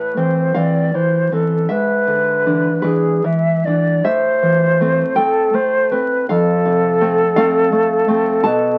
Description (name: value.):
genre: romantic duo for flute and classical guitar.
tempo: 48-57 BPM (dotted quarters).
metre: 6/8.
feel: rubato.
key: A minor.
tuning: A4 = 440 Hz.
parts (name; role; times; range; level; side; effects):
hollow concert flute; melody; 0.0-8.8 s; G#4 to E5; -18 LUFS; equal; none.
nylon-string guitar; accompaniment; 0.0-8.8 s; F2 to A5; -20 LUFS; equal; none.
room: moderate studio reverb, RT60 0.6 s.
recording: very old 78 rpm record, vinyl crackle.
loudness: -16 LUFS.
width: mono.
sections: 0.0-8.8 A section.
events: none.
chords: 0.0 Am; 1.7 E7/G#; 4.1 Am; 6.3 F.